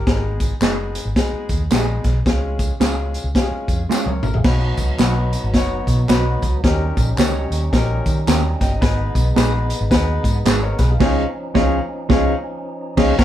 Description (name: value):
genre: uptempo 1960s-style soul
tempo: 110 BPM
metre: 4/4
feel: swing 60% on 8ths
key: unclear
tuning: A4 = 437 Hz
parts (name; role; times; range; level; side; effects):
- clear upright piano; accompaniment; 0.0-13.2 s; G#3 to A#5; -24 LUFS; left 3 dB; none
- vintage muted fingered electric bass; bass; 0.0-13.2 s; F#1 to D#3; -21 LUFS; equal; none
- vintage drum kit; drums; 0.1-13.2 s; crash cymbal, hi-hat, kick drum, snare drum, toms; -19 LUFS; equal; none
- tambourine and handclaps; percussion; 0.4-13.2 s; none; -30 LUFS; equal; none
- mellow electric guitar; stabs; 0.6-13.1 s; D#3 to G#4; -22 LUFS; right 3 dB; none
- tonewheel organ; sustained chords; 4.4-13.2 s; E#3 to E#5; -29 LUFS; equal; fast rotary speaker, overdrive
room: light reverb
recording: band playing live in one room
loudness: -16 LUFS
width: side -12 dB against mid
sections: 0.0-4.4 A section; 4.4-13.2 B section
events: drum fill 3.9-4.4; band accent 11.0-13.2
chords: 0.1 G#m; 2.3 C#; 4.4 B; 6.6 D#7; 8.8 G#m; 11.0 C#add9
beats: | 0.07 0.62 1.16 1.71 | 2.26 2.81 3.35 3.90 | 4.45 5.00 5.54 6.09 | 6.64 7.18 7.73 8.28 | 8.82 9.37 9.91 10.46 | 11.01 11.55 12.10 12.65 | 13.19